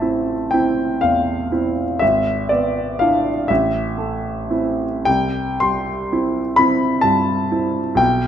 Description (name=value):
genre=classical, romantic nocturne for solo piano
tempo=35-44 BPM (dotted quarters)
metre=6/8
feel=rubato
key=A minor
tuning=A4 = 440 Hz
part: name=clear concert grand piano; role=solo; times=0.0-8.3 s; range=G#1 to C6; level=-16 LUFS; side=equal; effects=none
room=moderate recital hall reverb, RT60 1.6 s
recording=none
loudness=-16 LUFS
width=side -9 dB against mid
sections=0.0-8.3 A section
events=none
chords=0.0 Am; 2.0 E7/G#; 3.5 Am; 5.1 C